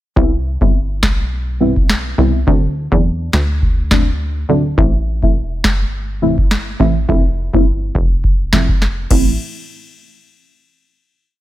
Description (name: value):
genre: dancehall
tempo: 104 BPM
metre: 4/4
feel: swing 56% on 16ths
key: unclear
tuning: A4 = 441 Hz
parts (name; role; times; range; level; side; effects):
- deep mellow chord stab; accompaniment; 0.2-9.3 s; E3 to E4; -18 LUFS; equal; chorus, phaser, sidechain pumping
- plucky analog bass; bass; 0.2-9.4 s; E1 to E2; -18 LUFS; equal; none
- booming analog drum machine; drums; 0.2-9.3 s; crash cymbal, kick drum, snare drum; -15 LUFS; equal; none
room: little or no reverb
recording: none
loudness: -13 LUFS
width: side -14 dB against mid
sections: 0.2-9.4 verse; 9.4-11.4 final hit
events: none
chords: 0.2 Cmaj7; 2.5 D7; 4.8 Am; 7.1 Fmaj7; 9.1 Am; 9.4 N.C.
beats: | 0.16 0.74 1.32 1.89 | 2.47 3.05 3.62 4.20 | 4.78 5.35 5.93 6.51 | 7.08 7.66 8.24 8.82